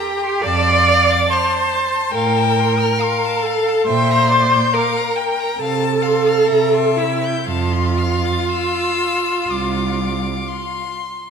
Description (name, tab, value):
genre	classical, slow romantic movement for string quartet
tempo	58-71 BPM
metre	4/4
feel	rubato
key	F major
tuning	A4 = 444 Hz
part	clear violin	melody	0.0-10.9 s	D5 to A5	-24 LUFS	left 12 dB	none
part	clear violin	second line	0.0-11.3 s	F5 to A6	-26 LUFS	left 5 dB	none
part	clear viola	accompaniment	0.0-10.9 s	E4 to D5	-17 LUFS	right 1 dB	none
part	rich cello	bass	0.4-10.3 s	C2 to C3	-22 LUFS	right 4 dB	none
room	wet concert hall reverb, RT60 1.8 s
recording	none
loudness	-15 LUFS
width	side -6 dB against mid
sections	0.0-11.3 A section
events	none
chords	0.4 F; 2.1 F/A; 3.9 Gm/Bb; 5.6 F/C; 6.5 C7; 7.5 F5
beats	| 0.43 1.30 2.14 2.99 | 3.87 4.73 5.59 6.49 | 7.47 8.49 9.49 10.46